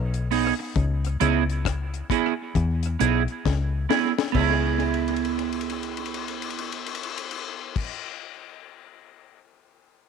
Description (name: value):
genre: roots reggae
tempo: 67 BPM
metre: 4/4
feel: swing 62% on 16ths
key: C# minor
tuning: A4 = 440 Hz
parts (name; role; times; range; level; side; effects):
- fingered electric bass; bass; 0.0-7.9 s; B1 to E2; -25 LUFS; left 2 dB; none
- deep reggae drum kit; drums; 0.1-9.4 s; crash cymbal, hi-hat, kick drum, ride cymbal, rim click, snare drum; -29 LUFS; left 7 dB; tape echo
- clean electric guitar; accompaniment; 0.3-7.9 s; B3 to G#4; -26 LUFS; right 14 dB; analog chorus, dub echo
room: light reverb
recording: 1960s-style stereo with parts hard left and right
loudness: -23 LUFS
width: side -6 dB against mid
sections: 0.0-4.3 A section; 4.3-7.9 B section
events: drum fill 3.4-4.3, 4.8-7.7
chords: 0.0 B6; 0.8 C#m7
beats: | 0.75 1.65 2.55 3.44 | 4.34 5.24 6.13 7.03